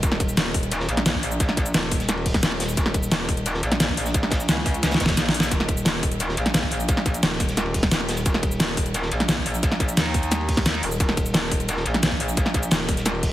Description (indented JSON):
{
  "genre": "dark technical drum and bass",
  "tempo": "175 BPM",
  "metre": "4/4",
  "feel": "straight",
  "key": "unclear",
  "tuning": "A4 = 440 Hz",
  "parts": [
    { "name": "metallic wobble bass", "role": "bass", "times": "0.0-13.3 s", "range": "Eb1 to Eb2", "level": "-25 LUFS", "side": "equal", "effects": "chorus, tube saturation" },
    { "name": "crunchy breakbeat drum kit", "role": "drums", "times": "0.0-13.3 s", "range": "hi-hat, ride cymbal, snare drum", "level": "-32 LUFS", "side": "equal", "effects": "high-pass filter on cymbals, high-pass filter on hats, high-pass filter on snare, high-pass filter on room" },
    { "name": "dubstep drum kit", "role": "drums", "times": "0.0-13.3 s", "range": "hi-hat, shaker, snare drum", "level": "-23 LUFS", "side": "equal", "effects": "overdrive" },
    { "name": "electronic kick drum", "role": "drums", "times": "0.0-13.3 s", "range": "none", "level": "-24 LUFS", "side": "equal", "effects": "none" }
  ],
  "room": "light reverb",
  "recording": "heavily compressed radio sound",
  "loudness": "-20 LUFS",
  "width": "side -14 dB against mid",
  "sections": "0.0-13.3 A section",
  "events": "drum fill 4.8-5.5",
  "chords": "none"
}